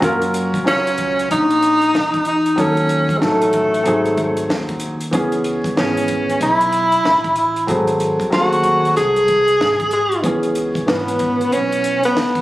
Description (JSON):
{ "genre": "hip hop, jazz-hop", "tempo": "94 BPM", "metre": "4/4", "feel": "swing 64% on 16ths", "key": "C# minor", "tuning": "A4 = 439 Hz", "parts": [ { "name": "warm upright piano", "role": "accompaniment", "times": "0.0-12.0 s", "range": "E3 to C#5", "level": "-19 LUFS", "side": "equal", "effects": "none" }, { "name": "upright bass", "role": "bass", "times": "0.0-12.4 s", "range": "F#1 to E2", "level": "-27 LUFS", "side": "equal", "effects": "none" }, { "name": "compact cocktail drum kit", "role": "drums", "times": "0.0-12.4 s", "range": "hi-hat, kick drum, snare drum", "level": "-26 LUFS", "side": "equal", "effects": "none" }, { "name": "breathy tenor saxophone", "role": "melody", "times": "0.7-12.4 s", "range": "G#3 to G#4", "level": "-16 LUFS", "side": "equal", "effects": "none" } ], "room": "light reverb, studio reverb", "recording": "recorded on a phone in the room, club reverb, vinyl crackle", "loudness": "-14 LUFS", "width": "side -16 dB against mid", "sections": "0.0-12.4 A section", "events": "none", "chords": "0.0 F#maj7; 2.6 D#m7b5; 3.9 G#7; 5.1 C#m7; 7.7 G#7b9; 10.2 C#m7" }